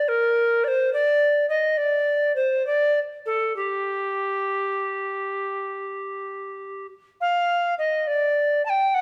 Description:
classical, baroque-style fantasia for unaccompanied recorder; 64-72 BPM (dotted quarters); 12/8; rubato; G minor; A4 = 440 Hz
tenor recorder; solo; 0.0-9.0 s; G4 to A5; -23 LUFS; equal
moderate recital hall reverb, RT60 1.5 s; -23 LUFS; mono
0.0-7.2 A section; 7.2-9.0 A section
| 0.07 0.93 1.78 2.66 | 3.56 4.49 5.40 6.30 | 7.21 8.07 8.94

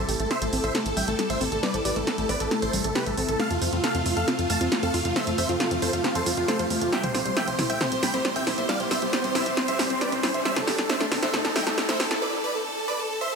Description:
uplifting trance; 136 BPM; 4/4; straight; A minor; A4 = 440 Hz
big supersaw lead; melody; 0.0-13.4 s; F4 to B5; -27 LUFS; right 1 dB; ping-pong delay
shimmering ambient pad; sustained chords; 0.0-12.2 s; C3 to A4; -32 LUFS; left 1 dB; chorus, built-in reverb
tight sequencer bass; bass; 0.0-12.2 s; A1 to F2; -32 LUFS; equal
riser; sound effects; 4.7-12.2 s; -34 LUFS; right 1 dB
wide unison pluck; arpeggios; 0.1-12.2 s; G3 to A5; -32 LUFS; left 3 dB; ping-pong delay
punchy analog drum machine; drums; 0.1-12.2 s; hi-hat, snare drum, toms; -28 LUFS; right 1 dB
light reverb, digital ambience; high-pass filter; -22 LUFS; side -5 dB against mid
0.0-13.4 A section
build-up 0.0-13.4; drum fill 0.0-12.2; filter sweep on synth pluck 0.0-13.4; riser 4.7-12.2; break 12.2-13.4
0.0 Am7; 3.4 F; 6.9 C; 10.5 Am7
0.31 0.75 1.19 | 1.63 2.07 2.51 2.95 | 3.40 3.84 4.28 4.72 | 5.16 5.60 6.04 6.48 | 6.92 7.37 7.81 8.25 | 8.69 9.13 9.57 10.01 | 10.45 10.90 11.34 11.78 | 12.22 12.66 13.10

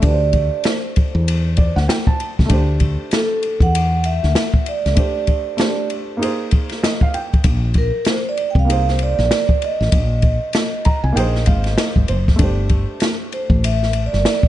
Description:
hip hop, jazz-hop; 97 BPM; 4/4; swing 61% on 16ths; A4 = 440 Hz
vibraphone with soft mallets; melody; 0.0-14.4 s; A4 to G5; -22 LUFS; right 3 dB
dark upright piano; accompaniment; 0.0-14.5 s; A3 to Bb5; -25 LUFS; right 2 dB
woody fretless electric bass; bass; 0.0-14.2 s; F#1 to E2; -17 LUFS; equal
open jazz drum kit; drums; 0.0-14.5 s; hi-hat, kick drum, ride cymbal, snare drum; -18 LUFS; equal
little or no reverb; nothing above 10.4 kHz; -15 LUFS; side -13 dB against mid
0.0-12.4 A section; 12.4-14.5 B section
upright piano fill 1.3-2.5, 6.5-7.4, 10.5-12.4; vibraphone solo 12.4-14.5
0.0 D9sus4; 6.2 Bb9sus4; 12.4 Gsus4
| 0.03 0.65 1.26 1.88 | 2.50 3.12 3.74 4.36 | 4.97 5.59 6.21 6.83 | 7.45 8.07 8.69 9.30 | 9.92 10.54 11.16 11.78 | 12.40 13.02 13.63 14.25

